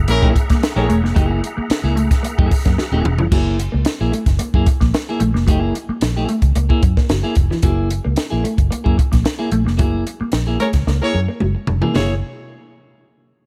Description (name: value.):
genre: funk.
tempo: 111 BPM.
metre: 4/4.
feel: straight.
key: F# mixolydian.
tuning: A4 = 442 Hz.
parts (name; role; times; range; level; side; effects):
percussive tonewheel organ; sustained chords; 0.0-3.3 s; G#4 to A#5; -32 LUFS; equal; slow rotary speaker, overdrive, chorus vibrato.
vintage muted fingered electric bass; bass; 0.0-12.2 s; D#1 to F#2; -21 LUFS; equal; none.
warm horn section; second line; 0.1-1.0, 10.6-12.1 s; A#3 to C#5; -25 LUFS; equal; none.
clean electric guitar; accompaniment; 0.1-12.1 s; A#3 to G#4; -27 LUFS; equal; none.
mellow electric guitar; riff; 0.1-12.1 s; E3 to A#3; -26 LUFS; equal; phaser.
compact cocktail drum kit; drums; 0.1-12.1 s; crash cymbal, hi-hat, kick drum, snare drum, toms; -20 LUFS; equal; none.
room: little or no reverb.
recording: none.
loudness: -17 LUFS.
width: mono.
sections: 0.0-3.3 A section; 3.3-12.0 B section; 12.0-13.5 C section.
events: drum fill 2.8-3.3, 10.9-12.0; band accent 9.8-12.0.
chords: 0.0 F#9.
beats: 0.08 0.62 | 1.16 1.70 2.24 2.78 | 3.32 3.86 4.39 4.93 | 5.47 6.01 6.55 7.09 | 7.63 8.18 8.71 9.26 | 9.79 10.34 10.88 11.41 | 11.96.